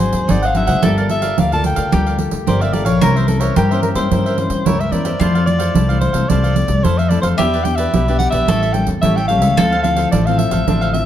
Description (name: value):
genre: samba and choro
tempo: 110 BPM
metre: 4/4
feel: straight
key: D minor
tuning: A4 = 439 Hz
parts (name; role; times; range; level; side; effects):
- breathy soprano saxophone; melody; 0.0-11.1 s; A4 to A5; -20 LUFS; equal; none
- bowl-back mandolin; second line; 0.0-11.1 s; F4 to Bb4; -26 LUFS; left 2 dB; tape echo
- cavaquinho; accompaniment; 0.0-11.0 s; D4 to F#5; -24 LUFS; right 3 dB; none
- nylon-string guitar; accompaniment; 0.0-11.1 s; F2 to A4; -22 LUFS; left 2 dB; none
- upright bass; bass; 0.0-11.0 s; G1 to G2; -18 LUFS; left 1 dB; none
- pandeiro; percussion; 0.0-11.1 s; none; -20 LUFS; right 5 dB; none
room: moderate large studio reverb, RT60 1.2 s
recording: dark, warm production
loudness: -13 LUFS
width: side -11 dB against mid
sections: 0.0-11.1 A section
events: none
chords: 0.0 G#7#11; 0.8 Gm9; 3.0 C7b9; 5.2 Fmaj7; 7.4 Em7; 8.5 A7b9; 9.6 Dm9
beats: 0.29 | 0.83 1.38 1.93 2.48 | 3.02 3.57 4.12 4.66 | 5.21 5.75 6.30 6.85 | 7.39 7.94 8.49 9.03 | 9.58 10.13 10.68